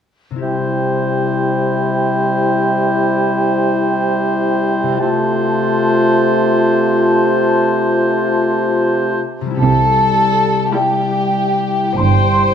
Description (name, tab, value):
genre	classical, slow romantic movement for symphony orchestra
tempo	47-56 BPM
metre	4/4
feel	rubato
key	C major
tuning	A4 = 440 Hz
part	concert harp	arpeggios	0.3-12.5 s	C3 to A4	-25 LUFS	left 8 dB	none
part	clear clarinet	second line	0.4-9.2 s	E4 to F4	-21 LUFS	left 1 dB	none
part	mellow hollow small flute group	second line	0.4-12.5 s	G5 to C6	-19 LUFS	equal	none
part	warm oboe	second line	0.4-9.2 s	C5	-22 LUFS	right 2 dB	none
part	clear bassoon	accompaniment	0.4-9.2 s	C3	-19 LUFS	right 2 dB	none
part	mellow French horn section	sustained chords	0.4-12.5 s	G3 to F4	-20 LUFS	left 3 dB	none
part	rich chamber violin section	melody	9.6-12.5 s	G4 to C5	-23 LUFS	left 1 dB	none
part	clear chamber cello section	bass	9.6-12.5 s	G2 to C3	-19 LUFS	right 6 dB	none
part	warm chamber double bass section	bass	9.6-12.5 s	G1 to C2	-17 LUFS	right 5 dB	none
part	rich chamber viola section	accompaniment	10.7-11.7 s	G3 to E4	-26 LUFS	equal	none
part	dark studio violin section	second line	12.0-12.5 s	G5	-22 LUFS	left 6 dB	none
room	moderate concert hall reverb, RT60 2.1 s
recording	none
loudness	-13 LUFS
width	side -8 dB against mid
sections	0.4-9.6 A section; 9.6-12.5 B section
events	none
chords	0.4 C; 5.0 F/C; 9.6 C